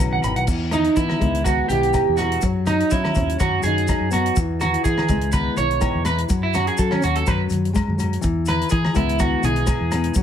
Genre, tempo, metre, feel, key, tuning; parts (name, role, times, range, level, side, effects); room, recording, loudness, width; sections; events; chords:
highlife guitar band; 124 BPM; 4/4; straight; E major; A4 = 441 Hz
fingerpicked steel-string acoustic guitar; accompaniment; 0.0-10.2 s; B2 to B4; -25 LUFS; left 4 dB
fingered electric bass; bass; 0.0-10.2 s; G#1 to F#3; -24 LUFS; equal
warm soul drum kit; drums; 0.0-10.2 s; crash cymbal, hi-hat, kick drum, rim click; -25 LUFS; equal
electric guitar at the edge of break-up; arpeggios; 0.1-10.1 s; C#4 to B5; -22 LUFS; right 4 dB; wide subtle chorus, slapback echo
agogo bells; percussion; 0.2-10.0 s; -33 LUFS; left 8 dB
congas; percussion; 0.2-10.0 s; -30 LUFS; right 2 dB
maracas; percussion; 0.2-10.2 s; -35 LUFS; left 7 dB
studio ambience; -18 LUFS; side -9 dB against mid
0.5-10.2 A section
clean electric guitar solo 0.5-10.2
0.5 E; 2.4 F#5; 3.4 B/F#; 4.4 E; 6.3 F#5; 7.3 F#sus24; 8.2 E